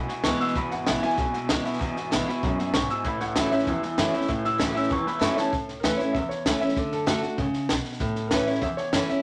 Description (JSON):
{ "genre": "rockabilly", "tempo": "194 BPM", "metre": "4/4", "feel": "straight", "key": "A major", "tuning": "A4 = 440 Hz", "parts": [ { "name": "clear upright piano", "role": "melody", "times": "0.0-9.2 s", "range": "A4 to E6", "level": "-32 LUFS", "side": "equal", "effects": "none" }, { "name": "picked steel-string acoustic guitar", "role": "accompaniment", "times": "0.0-9.2 s", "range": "E2 to F#4", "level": "-29 LUFS", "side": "equal", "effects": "none" }, { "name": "electric guitar through a small old amp", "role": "riff", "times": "0.0-5.5 s", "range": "E2 to F#3", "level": "-33 LUFS", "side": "equal", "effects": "tremolo" }, { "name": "upright bass", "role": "bass", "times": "0.0-9.1 s", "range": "E1 to A2", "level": "-38 LUFS", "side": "equal", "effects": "none" }, { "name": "compact cocktail drum kit", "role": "drums", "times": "0.1-9.1 s", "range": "hi-hat, kick drum, snare drum", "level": "-31 LUFS", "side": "equal", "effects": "none" } ], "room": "moderate studio ambience, RT60 0.5 s", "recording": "none", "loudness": "-25 LUFS", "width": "mono", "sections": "0.0-5.5 A section; 5.5-9.2 A section", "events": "drum fill 5.4", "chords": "0.0 E; 3.0 A; 6.8 D; 8.0 A" }